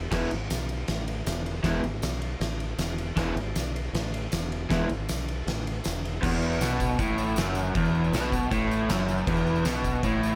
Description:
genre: garage rock duo or trio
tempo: 157 BPM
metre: 4/4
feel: straight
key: E major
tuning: A4 = 440 Hz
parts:
  - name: growling fingered electric bass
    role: bass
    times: 0.0-10.4 s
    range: E1 to B1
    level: -34 LUFS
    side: equal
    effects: overdrive
  - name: raw garage guitar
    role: riff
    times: 0.1-10.4 s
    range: E2 to E4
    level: -28 LUFS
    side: equal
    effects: overdrive
  - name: oversized low-tuned drum kit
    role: drums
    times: 0.1-10.1 s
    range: crash cymbal, kick drum, ride cymbal, snare drum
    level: -33 LUFS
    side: equal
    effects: none
  - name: tambourine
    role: percussion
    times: 0.5-10.4 s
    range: none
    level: -45 LUFS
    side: equal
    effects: none
room: light reverb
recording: none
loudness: -28 LUFS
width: mono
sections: 0.0-6.2 A section; 6.2-10.4 B section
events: none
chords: 0.0 E; 6.2 E5

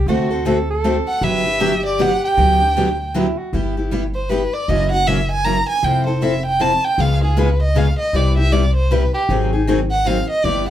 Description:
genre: acoustic string swing (jazz manouche)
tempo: 156 BPM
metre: 3/4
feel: swing 61% on 8ths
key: G major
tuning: A4 = 441 Hz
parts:
  - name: mellow soprano saxophone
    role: second line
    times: 0.0-3.5 s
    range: E4 to B4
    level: -24 LUFS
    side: right 1 dB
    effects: none
  - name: picked steel-string acoustic guitar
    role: accompaniment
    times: 0.1-10.7 s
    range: C3 to A4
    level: -22 LUFS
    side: left 3 dB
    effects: none
  - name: picked steel-string acoustic guitar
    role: accompaniment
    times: 0.1-10.7 s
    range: C3 to A#4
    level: -24 LUFS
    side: right 2 dB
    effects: none
  - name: upright bass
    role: bass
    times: 0.1-10.7 s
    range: F1 to D2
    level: -20 LUFS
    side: equal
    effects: none
  - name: warm violin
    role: melody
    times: 1.1-10.7 s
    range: G4 to A#5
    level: -19 LUFS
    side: right 1 dB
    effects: none
room: wet small room reverb, RT60 0.5 s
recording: heard from further back in the room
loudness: -15 LUFS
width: side -11 dB against mid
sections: 0.0-3.5 A section; 3.5-10.7 B section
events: violin solo 3.5-10.7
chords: 0.1 D7; 1.2 Gmaj7; 3.5 G6; 4.7 F#7; 5.8 Fmaj7; 7.0 C#7; 8.1 Cmaj7; 9.3 Ab7

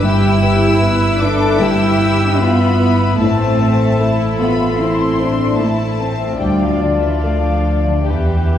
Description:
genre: cinematic, emotional film score for orchestra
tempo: 75 BPM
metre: 4/4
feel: rubato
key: A minor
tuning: A4 = 441 Hz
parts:
  - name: dark studio violin section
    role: melody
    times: 0.0-8.6 s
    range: D5 to E6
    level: -24 LUFS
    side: left 4 dB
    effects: none
  - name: rich studio violin section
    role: second line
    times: 0.0-8.6 s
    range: C4 to A4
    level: -20 LUFS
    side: left 4 dB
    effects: none
  - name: warm concert grand piano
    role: accompaniment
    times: 0.0-8.6 s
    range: D2 to D5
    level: -19 LUFS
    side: left 1 dB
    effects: none
  - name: warm studio viola section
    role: accompaniment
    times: 0.0-8.6 s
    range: F4 to E5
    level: -22 LUFS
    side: left 1 dB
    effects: none
  - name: dark studio double bass section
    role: bass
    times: 0.0-8.6 s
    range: G1 to E2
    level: -19 LUFS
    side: right 1 dB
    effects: none
  - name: rich studio cello section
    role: bass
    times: 0.0-8.6 s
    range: D3 to E4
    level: -19 LUFS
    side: right 2 dB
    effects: none
room: wet scoring stage reverb, RT60 1.4 s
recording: heard from further back in the room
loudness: -12 LUFS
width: side -10 dB against mid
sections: 0.0-8.6 A section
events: none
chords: 0.0 Em/G; 3.2 Am; 6.4 Dm; 8.1 Em

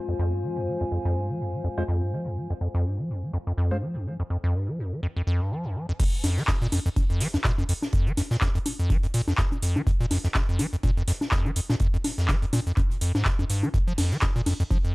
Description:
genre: acid house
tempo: 124 BPM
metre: 4/4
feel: swing 56% on 16ths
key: unclear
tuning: A4 = 444 Hz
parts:
  - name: dark analog pad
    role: sustained chords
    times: 0.0-4.0 s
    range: Ab3 to F5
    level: -38 LUFS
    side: left 1 dB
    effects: chorus, vintage 12-bit sampler grit, sidechain pumping
  - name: warbly tape-like pad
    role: texture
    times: 0.0-4.1 s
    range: F4 to Ab5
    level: -35 LUFS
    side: left 2 dB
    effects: chorus, built-in reverb, sidechain pumping
  - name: acid bass, square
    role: riff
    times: 0.1-14.9 s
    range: F2 to F3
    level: -26 LUFS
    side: equal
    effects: tube saturation, tape echo
  - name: percussive organ stab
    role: stabs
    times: 1.8-3.8 s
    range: Ab3 to C5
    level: -35 LUFS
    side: equal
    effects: analog chorus, tape echo
  - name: booming analog drum machine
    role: drums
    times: 6.0-14.9 s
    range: cabasa, congas, crash cymbal, handclaps, hi-hat, ride cymbal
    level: -29 LUFS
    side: left 1 dB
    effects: low-pass filter on perc, low-pass filter on hats, low-pass filter on cymbals, low-pass filter on snare, low-pass filter on room
  - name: electronic kick drum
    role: drums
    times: 6.0-14.8 s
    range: none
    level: -25 LUFS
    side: equal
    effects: none
  - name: natural country drum kit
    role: drums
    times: 6.0-14.8 s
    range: hi-hat, snare drum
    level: -41 LUFS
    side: right 2 dB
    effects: sidechain pumping on hats, high-pass filter on hats, high-pass filter on snare, high-pass filter on room
room: digital ambience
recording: dry, gritty hardware recording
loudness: -23 LUFS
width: side -24 dB against mid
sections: 0.0-6.0 A section; 6.0-14.9 B section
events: filter sweep on acid bass 0.0-6.0; drop 6.0-14.9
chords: 0.0 Fm; 6.0 N.C.

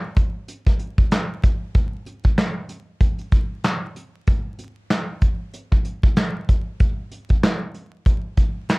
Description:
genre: hip hop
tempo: 95 BPM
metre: 4/4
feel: swing 57% on 16ths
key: none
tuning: none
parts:
  - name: soft brush drum kit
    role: drums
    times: 0.2-8.8 s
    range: handclaps, hi-hat, kick drum, snare drum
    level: -18 LUFS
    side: equal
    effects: none
room: light reverb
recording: worn, warbling old tape, cassette tape, vinyl crackle, warbly pitch drift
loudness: -19 LUFS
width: side -28 dB against mid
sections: 0.0-8.8 A section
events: none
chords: none

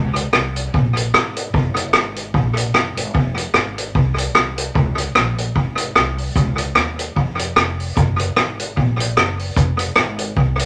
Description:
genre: ska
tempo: 149 BPM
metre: 4/4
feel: swing 56% on 8ths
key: Db major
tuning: A4 = 440 Hz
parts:
  - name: upright bass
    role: bass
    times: 0.0-10.7 s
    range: F1 to F2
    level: -26 LUFS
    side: equal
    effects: none
  - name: street-band drum kit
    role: drums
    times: 0.2-10.7 s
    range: hi-hat, kick drum, rim click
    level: -19 LUFS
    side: equal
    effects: tape echo
room: moderate studio ambience, RT60 0.5 s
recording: none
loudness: -18 LUFS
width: mono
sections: 0.0-10.7 A section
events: none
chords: none

